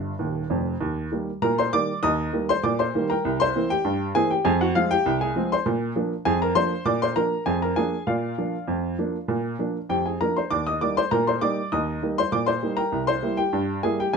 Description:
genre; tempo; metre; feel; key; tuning
ragtime piano; 99 BPM; 2/4; straight; Eb major; A4 = 440 Hz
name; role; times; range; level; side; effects
warm upright piano; solo; 0.0-14.2 s; Eb1 to Eb6; -22 LUFS; equal; none
room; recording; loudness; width
moderate small room reverb, RT60 0.5 s; dark, warm production; -22 LUFS; side -5 dB against mid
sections
0.8-14.2 A section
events
upright piano fill 0.0-0.8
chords
0.0 Ab5; 0.8 Eb; 3.2 C7; 4.4 Fm; 5.6 Bb7; 8.1 Bb; 10.5 Eb; 12.9 C7

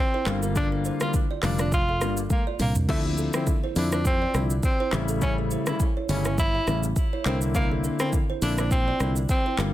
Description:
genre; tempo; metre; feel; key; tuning
afrobeats; 103 BPM; 4/4; swing 55% on 16ths; unclear; A4 = 440 Hz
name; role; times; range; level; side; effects
breathy tenor saxophone; melody; 0.0-9.7 s; A3 to F4; -29 LUFS; equal; plate reverb, digital delay
kalimba; riff; 0.1-9.6 s; Bb3 to F5; -35 LUFS; right 8 dB; none
warm baby grand piano; accompaniment; 0.3-9.7 s; C#3 to F4; -29 LUFS; left 4 dB; plate reverb
fingered electric bass; bass; 0.3-9.7 s; F1 to F2; -27 LUFS; equal; none
afro-pop drum kit; drums; 0.3-9.7 s; crash cymbal, handclaps, hi-hat, kick drum, rim click, shaker, toms; -26 LUFS; equal; overdrive
room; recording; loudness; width
light reverb; dense, heavily limited modern master; -22 LUFS; side -14 dB against mid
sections
0.0-9.7 A section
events
drum fill 2.3-2.9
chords
0.3 Gm7; 2.9 Dm9; 4.9 A7; 7.3 C9

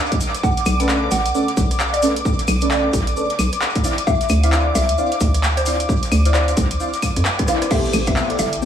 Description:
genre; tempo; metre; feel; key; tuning
UK garage, two-step garage; 132 BPM; 4/4; swing 61% on 16ths; unclear; A4 = 441 Hz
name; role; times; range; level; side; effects
ethereal airy pad; sustained chords; 0.0-8.7 s; D6; -27 LUFS; equal; ensemble chorus, built-in reverb, tremolo, sidechain pumping
electronic kick drum; drums; 0.1-8.1 s; none; -21 LUFS; equal; overdrive
house drum kit; drums; 0.1-8.6 s; claves, crash cymbal, handclaps, hi-hat, rim click; -24 LUFS; equal; overdrive, tape echo
cabasa; percussion; 0.1-8.7 s; none; -32 LUFS; left 3 dB; tape echo
mallet-like synth pluck; melody; 0.4-8.6 s; C5 to F#5; -25 LUFS; equal; chorus, phaser, analog delay
hollow knocking FM bass; bass; 0.7-8.6 s; G1 to F2; -19 LUFS; equal; none
deep mellow chord stab; stabs; 0.8-8.7 s; B3 to F5; -23 LUFS; equal; chorus, phaser, analog delay
airy breathy pad; texture; 8.0-8.7 s; E4 to G5; -28 LUFS; left 2 dB; chorus, phaser, sidechain pumping
room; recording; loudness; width
light reverb; echo-heavy mix, small room ambience; -16 LUFS; side -9 dB against mid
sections
0.0-7.7 A section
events
drop 0.0-7.7; drum fill 7.3-7.7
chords
0.2 Bm9; 3.8 Dm9; 7.7 Am9

